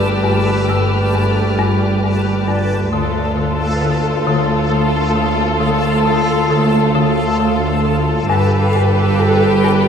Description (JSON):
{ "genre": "cinematic, suspense film score", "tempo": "67 BPM", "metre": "3/4", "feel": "straight", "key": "D dorian", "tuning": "A4 = 440 Hz", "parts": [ { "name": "muted studio violin section", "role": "melody", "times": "0.0-9.9 s", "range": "A4 to B4", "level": "-22 LUFS", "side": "left 4 dB", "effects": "none" }, { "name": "muted studio violin section", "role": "second line", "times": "0.0-9.9 s", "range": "F4 to G4", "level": "-22 LUFS", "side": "left 1 dB", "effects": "none" }, { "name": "muted studio viola section", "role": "accompaniment", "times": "0.0-9.9 s", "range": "A3 to A4", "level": "-21 LUFS", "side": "right 1 dB", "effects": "none" }, { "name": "backwards swelling texture", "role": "sustained chords", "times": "0.0-9.9 s", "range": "A4 to A5", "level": "-23 LUFS", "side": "equal", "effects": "built-in reverb" }, { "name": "folk marimba with hard mallets", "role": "riff", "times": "0.0-9.9 s", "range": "G2 to D3", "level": "-20 LUFS", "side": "left 3 dB", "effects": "none" }, { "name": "muted studio cello section", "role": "bass", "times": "0.0-9.9 s", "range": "D2 to G2", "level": "-20 LUFS", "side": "right 3 dB", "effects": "none" }, { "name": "muted studio double bass section", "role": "bass", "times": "0.0-9.9 s", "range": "G1 to D2", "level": "-22 LUFS", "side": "right 3 dB", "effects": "none" }, { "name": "muted studio violin section", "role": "texture", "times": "0.0-2.4 s", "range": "D6 to F6", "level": "-28 LUFS", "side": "left 2 dB", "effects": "none" }, { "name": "music box", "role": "texture", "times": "0.7-3.3, 8.7-9.9 s", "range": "B4 to E6", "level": "-33 LUFS", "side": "left 1 dB", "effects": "none" } ], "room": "moderate concert hall reverb, RT60 2.3 s", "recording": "none", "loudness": "-13 LUFS", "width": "side -7 dB against mid", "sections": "0.0-9.9 A section", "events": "none", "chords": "0.0 Gadd9; 2.9 Dm; 8.3 Gadd9", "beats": "| 0.24 1.13 2.03 | 2.92 3.82 4.72 | 5.61 6.51 7.40 | 8.30 9.19" }